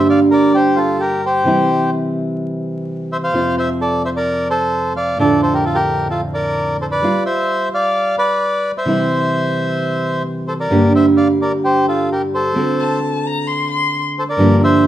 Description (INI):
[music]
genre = tango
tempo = 130 BPM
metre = 4/4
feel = rubato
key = unclear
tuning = A4 = 435 Hz
[part]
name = bandoneon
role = melody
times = 0.0-14.9 s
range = F4 to F5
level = -17 LUFS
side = equal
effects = none
[part]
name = nylon-string guitar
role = accompaniment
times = 0.0-14.9 s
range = F2 to G4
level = -17 LUFS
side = right 1 dB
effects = none
[part]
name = warm violin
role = second line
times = 12.8-14.0 s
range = A5 to C6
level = -20 LUFS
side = left 4 dB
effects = none
[sound]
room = moderate large studio reverb, RT60 1.1 s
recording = vinyl crackle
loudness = -14 LUFS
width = side -12 dB against mid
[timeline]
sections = 0.0-14.9 A section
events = none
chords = 0.0 Gm; 1.5 C; 3.3 F; 5.2 Dm/F; 7.0 G7; 8.9 C; 10.7 Gm; 12.6 D7